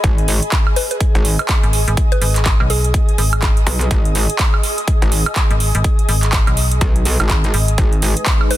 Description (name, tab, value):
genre	bass house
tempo	124 BPM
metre	4/4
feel	swing 60% on 16ths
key	G# minor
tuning	A4 = 445 Hz
part	metallic wobble bass	bass	0.0-8.1 s	G#1 to B1	-17 LUFS	equal	chorus, tube saturation, sidechain pumping
part	big-room dance drum kit	drums	0.0-8.6 s	handclaps, hi-hat, woodblock	-20 LUFS	right 2 dB	none
part	electronic kick drum	drums	0.0-8.4 s	none	-15 LUFS	equal	none
part	ethereal airy pad	texture	0.0-8.6 s	G#4 to D#6	-25 LUFS	equal	ensemble chorus, built-in reverb, tremolo, sidechain pumping
part	mallet-like synth pluck	melody	0.8-3.2, 8.5-8.6 s	G#4 to B4	-25 LUFS	left 1 dB	chorus, phaser, digital delay
part	metallic FM bass	bass	1.6-7.8 s	G#1 to B1	-16 LUFS	equal	overdrive, sidechain pumping
part	dark analog pad	sustained chords	8.1-8.6 s	G#3 to B4	-27 LUFS	left 1 dB	chorus, phaser, vintage 12-bit sampler grit, sidechain pumping
room	little or no reverb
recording	dense, heavily limited modern master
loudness	-13 LUFS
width	side -14 dB against mid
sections	0.0-8.6 A section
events	none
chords	0.0 G#m